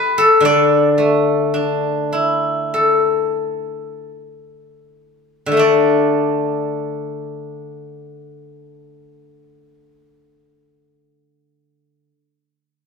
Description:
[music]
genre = chinese traditional, Chinese solo plucked strings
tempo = 39-56 BPM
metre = 4/4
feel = rubato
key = D zhi mode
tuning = A4 = 441 Hz
[part]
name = steel-string zither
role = solo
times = 0.0-12.1 s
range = D3 to A5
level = -15 LUFS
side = left 2 dB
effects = none
[sound]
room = wet recital hall reverb, RT60 1.7 s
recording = none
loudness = -14 LUFS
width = side -5 dB against mid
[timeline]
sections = 0.0-5.6 A section; 5.6-11.5 B section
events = slowing down 0.0-5.6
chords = none

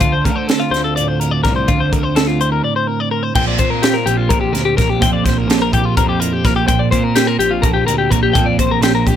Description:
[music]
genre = math rock and midwest emo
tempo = 252 BPM (eighths)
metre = 7/8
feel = straight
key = unclear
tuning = A4 = 440 Hz
[part]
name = clean electric guitar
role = accompaniment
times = 0.0-9.2 s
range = A2 to D5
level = -20 LUFS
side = right 6 dB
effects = none
[part]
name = twelve-string electric guitar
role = arpeggios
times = 0.0-9.2 s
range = F4 to G5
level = -18 LUFS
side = left 7 dB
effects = none
[part]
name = fuzz picked electric bass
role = bass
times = 0.0-9.2 s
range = Bb1 to D3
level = -20 LUFS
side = equal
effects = overdrive
[part]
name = crisp fusion drum kit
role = drums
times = 0.0-9.2 s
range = crash cymbal, hi-hat, kick drum, snare drum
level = -17 LUFS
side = right 1 dB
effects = none
[sound]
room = light reverb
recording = none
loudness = -13 LUFS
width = side -10 dB against mid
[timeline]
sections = 0.0-3.4 A section; 3.4-9.2 B section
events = break 2.6-3.4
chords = 0.0 Dm7; 1.7 Dm9; 3.4 Bb69

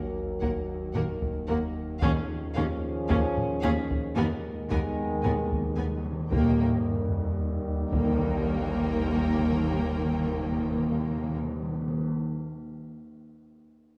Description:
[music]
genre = cinematic, suspense film score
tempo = 56 BPM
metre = 4/4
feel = straight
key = unclear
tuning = A4 = 440 Hz
[part]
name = dark French horn section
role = sustained chords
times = 0.0-10.8 s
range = Bb3 to Bb4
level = -38 LUFS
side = equal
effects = none
[part]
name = dark trombone section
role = sustained chords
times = 0.0-10.8 s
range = Eb3 to Ab3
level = -38 LUFS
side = equal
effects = none
[part]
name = metallic inharmonic drone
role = drone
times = 0.0-10.8 s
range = Eb2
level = -39 LUFS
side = equal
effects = none
[part]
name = sub drop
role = sound effects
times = 0.0-10.9 s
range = none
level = -37 LUFS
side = equal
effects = none
[part]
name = music box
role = texture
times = 0.0-6.3 s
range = Db5 to Cb7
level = -46 LUFS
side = equal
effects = none
[part]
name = rich symphonic violin section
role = melody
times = 0.4-11.4 s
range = F5 to Ab5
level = -47 LUFS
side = equal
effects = none
[part]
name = rich symphonic violin section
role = second line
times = 0.4-11.4 s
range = Ab4 to Bb4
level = -45 LUFS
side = equal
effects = none
[part]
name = clear symphonic viola section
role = accompaniment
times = 0.4-11.4 s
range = Bb3 to Db4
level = -35 LUFS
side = equal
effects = none
[part]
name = rich symphonic cello section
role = bass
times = 0.4-11.4 s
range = Eb2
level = -35 LUFS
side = equal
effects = none
[part]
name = rich symphonic double bass section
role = bass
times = 0.4-11.4 s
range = Eb2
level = -36 LUFS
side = equal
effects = none
[part]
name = solo taiko drums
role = drums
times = 0.4-8.4 s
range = none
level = -35 LUFS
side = equal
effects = none
[part]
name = timpani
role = percussion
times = 2.0-12.1 s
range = Eb3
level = -35 LUFS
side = equal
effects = none
[part]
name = tam-tam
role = percussion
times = 6.3-12.1 s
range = none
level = -45 LUFS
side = equal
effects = none
[sound]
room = wet scoring stage reverb, RT60 1.7 s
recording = dark, warm production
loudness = -28 LUFS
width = mono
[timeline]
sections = 0.0-6.3 A section; 6.3-10.6 B section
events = impact 0.0-2.0, 6.3-10.6; timpani fill 4.2-6.3; band accent 6.3-7.4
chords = 0.0 Ebm; 2.0 Dbadd9/Eb; 4.2 Abmadd9/Eb; 6.3 Eb

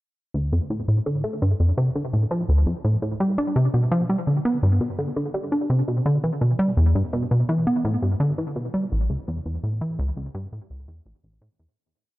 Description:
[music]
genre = ambient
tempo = 84 BPM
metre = 4/4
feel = straight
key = D dorian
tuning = A4 = 440 Hz
[part]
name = plucky analog bass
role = solo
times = 0.3-11.7 s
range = A1 to D4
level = -20 LUFS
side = equal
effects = analog delay
[sound]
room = light reverb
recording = cassette tape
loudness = -20 LUFS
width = side -17 dB against mid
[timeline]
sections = 0.3-11.8 A section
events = fade-out 8.0-11.8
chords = none

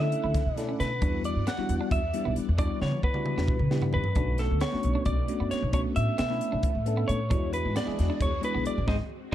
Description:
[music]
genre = electric jazz fusion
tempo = 267 BPM (eighths)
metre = 7/8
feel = straight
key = unclear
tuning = A4 = 440 Hz
[part]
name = lightly driven lead guitar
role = melody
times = 0.0-9.0 s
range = G#4 to F#5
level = -32 LUFS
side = equal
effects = plate reverb
[part]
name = bell-like tine electric piano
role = accompaniment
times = 0.0-9.3 s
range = G3 to A4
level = -32 LUFS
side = left 1 dB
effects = medium stereo tremolo, phaser, plate reverb
[part]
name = string machine, violas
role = sustained chords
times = 0.0-9.3 s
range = D3 to F#5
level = -42 LUFS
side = equal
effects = phaser, ensemble chorus
[part]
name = clean electric guitar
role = stabs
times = 0.0-9.3 s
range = G#3 to E4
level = -39 LUFS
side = right 5 dB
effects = lush chorus, plate reverb
[part]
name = upright bass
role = bass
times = 0.0-9.0 s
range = G#1 to E3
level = -29 LUFS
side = equal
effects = none
[part]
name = crisp fusion drum kit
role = drums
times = 0.1-9.3 s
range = hi-hat, kick drum, snare drum, toms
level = -30 LUFS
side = equal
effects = none
[sound]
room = light reverb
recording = dark, warm production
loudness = -25 LUFS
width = side -12 dB against mid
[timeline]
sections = 0.0-9.3 A section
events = drum fill 2.8-4.2, 9.1; band accent 8.9-9.3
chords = 0.0 Dmaj9; 1.0 Em9; 4.2 Bm9; 7.3 E9

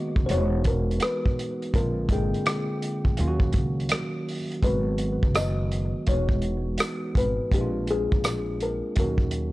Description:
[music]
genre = lo-fi hip hop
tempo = 83 BPM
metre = 4/4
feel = swing 65% on 16ths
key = G# minor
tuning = A4 = 440 Hz
[part]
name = kalimba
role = melody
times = 0.0-9.5 s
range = G4 to D#5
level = -30 LUFS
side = left 3 dB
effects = low-pass filter, analog delay
[part]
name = mellow tine electric piano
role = accompaniment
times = 0.0-9.5 s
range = D3 to G5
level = -30 LUFS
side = right 1 dB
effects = cassette tape, low-pass filter
[part]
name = upright bass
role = bass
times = 0.2-9.5 s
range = E1 to D#2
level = -28 LUFS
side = equal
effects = tube saturation
[part]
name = vintage drum kit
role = drums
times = 0.2-9.5 s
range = hi-hat, kick drum, rim click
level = -25 LUFS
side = equal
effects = vintage 12-bit sampler grit
[part]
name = tambourine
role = percussion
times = 5.4-8.5 s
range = none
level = -40 LUFS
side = right 2 dB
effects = none
[sound]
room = studio ambience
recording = dry, gritty hardware recording, cassette tape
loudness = -23 LUFS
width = side -18 dB against mid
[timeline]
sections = 0.0-4.6 A section; 4.6-9.5 B section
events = none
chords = 0.3 Emaj7; 1.7 A#7; 3.2 D#m7; 4.6 G#m7; 6.1 Emaj7; 7.5 A#7; 9.0 D#m7

